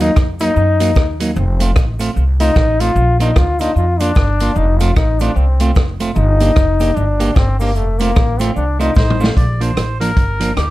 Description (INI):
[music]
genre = ska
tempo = 150 BPM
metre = 4/4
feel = swing 60% on 8ths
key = Bb major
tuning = A4 = 443 Hz
[part]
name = clear trombone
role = melody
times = 0.0-9.2 s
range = A3 to F4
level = -18 LUFS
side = left 2 dB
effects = slapback echo, plate reverb
[part]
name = clean electric guitar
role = accompaniment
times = 0.0-10.6 s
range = F3 to G4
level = -21 LUFS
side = right 3 dB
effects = warbly pitch drift, slapback echo, plate reverb
[part]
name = upright bass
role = bass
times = 0.0-10.7 s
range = F1 to Gb2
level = -16 LUFS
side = equal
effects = none
[part]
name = vintage drum kit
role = drums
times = 0.0-10.7 s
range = hi-hat, kick drum, rim click, snare drum, toms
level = -16 LUFS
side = equal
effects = none
[part]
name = cabasa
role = percussion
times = 0.0-9.3 s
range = none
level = -42 LUFS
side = left 5 dB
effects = none
[part]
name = melodica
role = melody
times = 9.0-10.7 s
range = G4 to D5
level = -22 LUFS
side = equal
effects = slapback echo, plate reverb
[sound]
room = light reverb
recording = dark, warm production, faint mains hum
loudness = -12 LUFS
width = side -16 dB against mid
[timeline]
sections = 0.0-9.4 A section; 9.4-10.7 B section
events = trombone solo 0.0-9.4; drum fill 9.0-9.4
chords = 0.0 Ebm; 1.4 F; 3.0 Bb; 4.6 F; 6.2 Gm; 7.8 F; 9.4 Bb